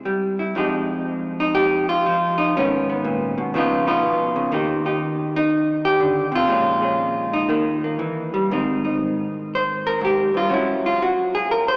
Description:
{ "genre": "solo jazz", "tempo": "121 BPM", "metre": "4/4", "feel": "swing 66% on 8ths, rubato", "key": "unclear", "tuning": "A4 = 436 Hz", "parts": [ { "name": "vintage hollow-body jazz guitar", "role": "solo", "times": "0.0-11.8 s", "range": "F2 to C5", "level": "-21 LUFS", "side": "equal", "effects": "none" } ], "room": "wet church reverb, RT60 3.8 s", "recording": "recorded in a church or concert hall, small speaker sound", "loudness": "-21 LUFS", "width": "mono", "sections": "0.0-8.5 A section; 8.5-11.8 B section", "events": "hollow-body jazz guitar solo 8.5-11.8", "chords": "0.0 C; 0.6 Fm9; 2.6 Abm; 3.5 Db9; 4.5 Ebmaj7; 6.5 Bbm7; 7.5 Eb; 8.5 Abmaj7; 10.5 Gb5" }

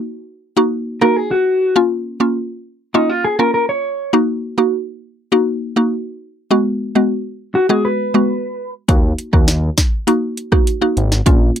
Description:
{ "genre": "dancehall", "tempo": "101 BPM", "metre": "4/4", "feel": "straight", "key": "Eb minor", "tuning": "A4 = 443 Hz", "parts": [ { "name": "mallet-like synth pluck", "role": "accompaniment", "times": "0.6-11.6 s", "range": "Ab3 to Gb4", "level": "-16 LUFS", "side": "equal", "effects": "chorus, phaser" }, { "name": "mellow electric guitar", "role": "arpeggios", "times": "1.0-8.7 s", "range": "Eb4 to Db5", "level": "-16 LUFS", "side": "left 1 dB", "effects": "none" }, { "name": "fat analog bass", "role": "bass", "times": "8.9-11.5 s", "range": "Ab1 to Eb2", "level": "-17 LUFS", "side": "equal", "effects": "none" }, { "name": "afro-pop drum kit", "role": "drums", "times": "8.9-11.6 s", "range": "hi-hat, kick drum, rim click, snare drum", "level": "-14 LUFS", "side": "equal", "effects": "none" } ], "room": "little or no reverb", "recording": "dry, gritty hardware recording", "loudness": "-14 LUFS", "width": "side -9 dB against mid", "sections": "0.0-11.6 A section", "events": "none", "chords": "0.0 Ebm; 1.8 Bbm; 4.1 Ebm/Bb; 6.5 Abm7; 8.9 Ebm" }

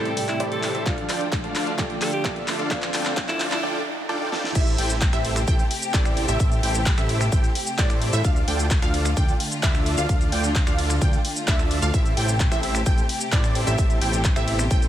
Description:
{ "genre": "EDM, festival progressive house", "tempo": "130 BPM", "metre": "4/4", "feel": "straight", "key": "A minor", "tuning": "A4 = 440 Hz", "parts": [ { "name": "raspy alto saxophone", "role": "melody", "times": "0.0-3.6 s", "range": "E4 to A4", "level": "-31 LUFS", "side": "left 1 dB", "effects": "tape echo" }, { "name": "warm grand piano", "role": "accompaniment", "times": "0.0-4.6 s", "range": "A2 to G4", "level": "-32 LUFS", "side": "right 2 dB", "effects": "sidechain pumping, tape echo" }, { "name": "rich studio string section", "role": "sustained chords", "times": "0.0-14.9 s", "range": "B2 to G4", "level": "-31 LUFS", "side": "left 1 dB", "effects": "sidechain pumping" }, { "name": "dense compressed supersaw", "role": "riff", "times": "0.0-14.9 s", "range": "D4 to G5", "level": "-28 LUFS", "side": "right 1 dB", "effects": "sidechain pumping, low-pass filter, tape echo" }, { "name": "fat analog bass", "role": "bass", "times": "0.0-14.9 s", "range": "A1 to A2", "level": "-26 LUFS", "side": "equal", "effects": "sidechain pumping, high-pass filter" }, { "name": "riser and noise sweep", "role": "sound effects", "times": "0.5-4.6 s", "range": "none", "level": "-35 LUFS", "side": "right 1 dB", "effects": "none" }, { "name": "big-room dance drum kit", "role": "drums", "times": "0.1-14.9 s", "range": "crash cymbal, finger snaps, handclaps, hi-hat, ride cymbal, shaker, snare drum", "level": "-28 LUFS", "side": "left 1 dB", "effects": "none" }, { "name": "electronic kick drum", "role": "drums", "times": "0.9-14.8 s", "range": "none", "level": "-22 LUFS", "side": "equal", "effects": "none" }, { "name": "wide unison pluck", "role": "arpeggios", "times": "4.6-14.9 s", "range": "D5 to G5", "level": "-30 LUFS", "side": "right 2 dB", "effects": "phaser, cassette tape, sidechain pumping, tape echo" } ], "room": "light reverb, digital ambience", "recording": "high-pass filter", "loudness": "-20 LUFS", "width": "side -12 dB against mid", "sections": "0.0-4.6 A section; 4.6-14.9 B section", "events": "build-up 0.0-4.6; drum fill 0.0-3.6, 4.3; riser 0.5-4.6; noise sweep 2.7-4.6; drop 4.6-14.9", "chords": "0.0 Am7; 0.9 Dm; 4.6 Am7; 8.2 Dm; 11.9 Am7" }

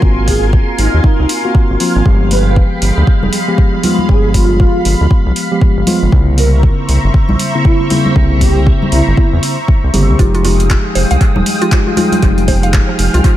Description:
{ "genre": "deep house", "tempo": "118 BPM", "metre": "4/4", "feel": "swing 60% on 16ths", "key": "F minor", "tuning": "A4 = 443 Hz", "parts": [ { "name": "soft string machine", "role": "sustained chords", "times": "0.0-13.4 s", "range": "Ab3 to F6", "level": "-20 LUFS", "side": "equal", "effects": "phaser, ensemble chorus, sidechain pumping" }, { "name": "mellow tine electric piano", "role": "stabs", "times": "0.0-13.4 s", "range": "Db3 to G4", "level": "-17 LUFS", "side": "left 1 dB", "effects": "slow stereo tremolo, sidechain pumping, low-pass filter, dub echo" }, { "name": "round analog bass", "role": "bass", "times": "0.0-13.2 s", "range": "Eb1 to E2", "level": "-13 LUFS", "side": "equal", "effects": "sidechain pumping" }, { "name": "electronic kick drum", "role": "drums", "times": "0.0-13.4 s", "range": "none", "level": "-11 LUFS", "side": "equal", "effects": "studio reverb" }, { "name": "breathy flute-like synth lead", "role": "melody", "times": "0.3-9.4 s", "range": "Eb4 to B4", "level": "-20 LUFS", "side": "right 1 dB", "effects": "ensemble chorus, analog delay" }, { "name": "deep house drum kit", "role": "drums", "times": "0.3-13.4 s", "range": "handclaps, hi-hat", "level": "-21 LUFS", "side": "equal", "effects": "studio reverb, analog delay" }, { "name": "congas", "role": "percussion", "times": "0.3-12.6 s", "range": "none", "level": "-22 LUFS", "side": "equal", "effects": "analog delay" }, { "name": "mallet-like synth pluck", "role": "arpeggios", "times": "10.2-13.4 s", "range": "F3 to F5", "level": "-20 LUFS", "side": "right 4 dB", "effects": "chorus, sidechain pumping, dub echo" }, { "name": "soft string machine", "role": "texture", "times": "10.2-13.4 s", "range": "Ab4", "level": "-28 LUFS", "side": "equal", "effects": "ensemble chorus" } ], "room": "little or no reverb", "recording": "echo-heavy mix", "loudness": "-9 LUFS", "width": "side -13 dB against mid", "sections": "0.0-13.4 A section", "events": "none", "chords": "0.0 Ab13; 2.1 G7b9; 6.1 C7b9; 10.2 Fm9" }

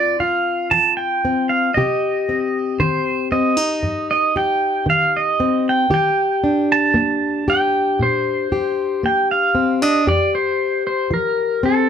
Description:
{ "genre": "acoustic folk-pop ballad", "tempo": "58 BPM", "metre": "4/4", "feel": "straight", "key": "unclear", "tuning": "A4 = 439 Hz", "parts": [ { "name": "pedal steel guitar", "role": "melody", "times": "0.0-11.9 s", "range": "A4 to A5", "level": "-18 LUFS", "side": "right 3 dB", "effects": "none" }, { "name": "fingerpicked plugged-in steel-string acoustic guitar", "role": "accompaniment", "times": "0.0-11.9 s", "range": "F2 to G4", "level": "-20 LUFS", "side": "left 3 dB", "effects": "none" } ], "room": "moderate small room reverb, RT60 0.6 s", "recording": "close, detailed microphones", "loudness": "-16 LUFS", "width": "side -8 dB against mid", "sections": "0.0-11.9 A section", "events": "none", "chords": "0.0 Bbsus2 (rootless); 1.8 Cm; 5.9 Ebmaj7; 10.1 Fsus2" }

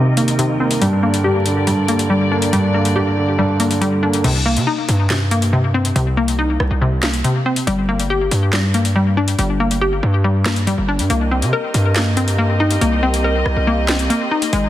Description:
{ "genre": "hip hop, drill", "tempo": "140 BPM", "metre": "4/4", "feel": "half-time", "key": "C minor", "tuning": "A4 = 437 Hz", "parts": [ { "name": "dark concert grand piano", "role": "accompaniment", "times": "0.0-4.3 s", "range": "G2 to Bb3", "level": "-18 LUFS", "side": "right 2 dB", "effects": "low-pass filter" }, { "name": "warm chamber string section", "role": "sustained chords", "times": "0.0-4.2, 11.1-14.7 s", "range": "G2 to Eb5", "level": "-24 LUFS", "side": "equal", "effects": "low-pass filter" }, { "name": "hollow square pluck", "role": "arpeggios", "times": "0.0-14.7 s", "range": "C3 to Bb4", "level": "-18 LUFS", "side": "left 1 dB", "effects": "chorus, low-pass filter, ping-pong delay" }, { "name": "drill drum kit", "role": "drums", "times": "0.2-14.6 s", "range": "crash cymbal, handclaps, hi-hat, rim click, snare drum", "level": "-23 LUFS", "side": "left 1 dB", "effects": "none" }, { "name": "hard-hitting 808-style bass", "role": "bass", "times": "4.2-14.7 s", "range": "G1 to C3", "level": "-18 LUFS", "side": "equal", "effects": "none" } ], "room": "light reverb", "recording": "dense, heavily limited modern master, vinyl crackle", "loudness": "-14 LUFS", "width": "side -13 dB against mid", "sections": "0.0-4.2 A section; 4.2-14.7 B section", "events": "filter sweep 0.0-4.2; kick muted 3.4-4.2", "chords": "0.0 Cm7; 0.8 Gm; 4.2 Cm7; 7.7 Gm; 11.1 Cm7" }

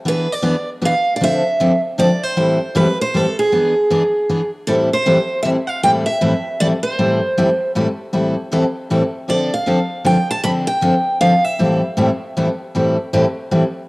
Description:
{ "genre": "jazz", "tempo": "156 BPM", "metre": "3/4", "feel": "swing 62% on 8ths", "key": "A minor", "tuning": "A4 = 442 Hz", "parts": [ { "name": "picked steel-string acoustic guitar", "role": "melody", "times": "0.1-12.4 s", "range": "G#4 to B5", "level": "-18 LUFS", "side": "right 1 dB", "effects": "cassette tape" }, { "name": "picked steel-string acoustic guitar", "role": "accompaniment", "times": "0.1-13.6 s", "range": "A2 to A4", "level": "-16 LUFS", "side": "left 1 dB", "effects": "cassette tape" } ], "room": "wet spring reverb, RT60 2.1 s", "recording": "home recording on cassette", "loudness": "-14 LUFS", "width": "side -22 dB against mid", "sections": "0.0-4.7 A section; 4.7-13.9 A section", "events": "none", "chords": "0.1 E7; 1.2 Dm7; 2.4 Am7; 3.5 E7; 4.7 Am7; 9.3 Dm7; 11.6 Am7" }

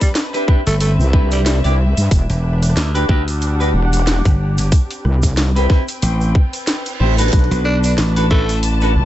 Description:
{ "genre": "glitch hop", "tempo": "92 BPM", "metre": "4/4", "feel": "swing 57% on 16ths", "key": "E minor", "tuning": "A4 = 440 Hz", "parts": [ { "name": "growling tenor saxophone", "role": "melody", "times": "0.0-1.6, 7.6-8.6 s", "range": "G3 to D4", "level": "-25 LUFS", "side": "right 1 dB", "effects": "dub echo" }, { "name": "drum and bass drum kit", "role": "drums", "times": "0.0-8.8 s", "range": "hi-hat, rim click, snare drum", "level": "-22 LUFS", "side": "equal", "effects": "none" }, { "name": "electronic kick drum", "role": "drums", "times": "0.0-8.5 s", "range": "none", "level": "-13 LUFS", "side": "equal", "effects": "none" }, { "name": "tube shaker", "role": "percussion", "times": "0.0-8.9 s", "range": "none", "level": "-31 LUFS", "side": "right 4 dB", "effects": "none" }, { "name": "muted studio string section", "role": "texture", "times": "0.0-9.1 s", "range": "C4 to A5", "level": "-26 LUFS", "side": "left 1 dB", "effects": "sidechain pumping" }, { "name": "clean electric guitar", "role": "stabs", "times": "0.3-8.9 s", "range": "C4 to D5", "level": "-23 LUFS", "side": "equal", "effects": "sidechain pumping, dub echo" }, { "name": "slap bass", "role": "bass", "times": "0.7-8.9 s", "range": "E1 to D2", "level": "-16 LUFS", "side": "equal", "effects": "none" }, { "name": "wobble bass", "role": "bass", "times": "1.0-9.1 s", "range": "E1 to G2", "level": "-15 LUFS", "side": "equal", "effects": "chorus" }, { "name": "reverse cymbal", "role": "sound effects", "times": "6.4-7.3 s", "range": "none", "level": "-31 LUFS", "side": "right 8 dB", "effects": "none" } ], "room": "digital ambience", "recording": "nothing above 8.0 kHz", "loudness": "-13 LUFS", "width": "side -14 dB against mid", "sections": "0.0-9.1 A section", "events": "reverse cymbal 6.4-7.3; kick drops out 6.7-7.3", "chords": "0.0 Cmaj7; 2.1 Em9; 4.7 Am9; 7.3 Bm7" }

